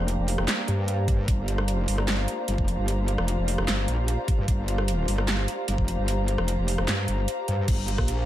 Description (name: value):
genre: heavy wobble dubstep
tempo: 150 BPM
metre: 4/4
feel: half-time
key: G minor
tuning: A4 = 439 Hz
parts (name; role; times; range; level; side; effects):
- bright studio string section; sustained chords; 0.0-7.7 s; Bb3 to G4; -36 LUFS; left 1 dB; sidechain pumping, low-pass filter
- metallic wobble bass; bass; 0.0-8.3 s; F1 to G2; -25 LUFS; equal; distortion, chorus, overdrive
- airy breathy pad; texture; 0.0-8.3 s; G4 to Bb5; -32 LUFS; equal; chorus, sidechain pumping
- dubstep drum kit; drums; 0.1-8.2 s; crash cymbal, handclaps, hi-hat, rim click, snare drum; -30 LUFS; right 1 dB; small room ambience
- electronic kick drum; drums; 1.1-8.1 s; none; -25 LUFS; equal; small room ambience
room: light reverb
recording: none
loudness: -23 LUFS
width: side -13 dB against mid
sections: 0.0-7.7 A section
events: drop 0.0-7.7; kick drops out 7.3-7.7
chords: 0.0 Gm